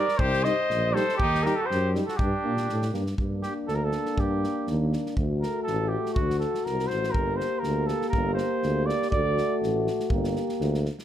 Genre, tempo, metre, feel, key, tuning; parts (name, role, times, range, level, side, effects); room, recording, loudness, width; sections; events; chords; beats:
balkan folk, Balkan brass band; 121 BPM; 2/4; swing 53% on 16ths; G harmonic minor; A4 = 439 Hz
mellow cornet; melody; 0.0-9.6 s; F#4 to Eb5; -28 LUFS; right 2 dB
clear trumpet; second line; 0.0-2.9 s; D4 to C5; -31 LUFS; left 4 dB; slapback echo
warm euphonium; accompaniment; 0.0-10.9 s; D4 to G4; -32 LUFS; left 8 dB
warm euphonium; accompaniment; 0.0-10.9 s; G3 to Bb3; -33 LUFS; right 5 dB
natural country drum kit; percussion; 0.1-11.0 s; kick drum, snare drum; -32 LUFS; equal
mellow tuba; bass; 0.2-10.9 s; G1 to Bb2; -29 LUFS; equal
light reverb; close, detailed microphones; -24 LUFS; side -10 dB against mid
0.0-3.2 A section; 3.2-11.0 B section
cornet solo 3.2-11.0
0.0 Cm; 1.2 Eb; 2.2 Gm; 5.2 D; 7.2 Gm; 9.1 D; 10.1 Gm
| 0.19 0.69 | 1.19 1.69 | 2.19 2.69 | 3.18 3.68 | 4.18 4.68 | 5.18 5.67 | 6.17 6.67 | 7.16 7.66 | 8.15 8.64 | 9.13 9.62 | 10.11 10.60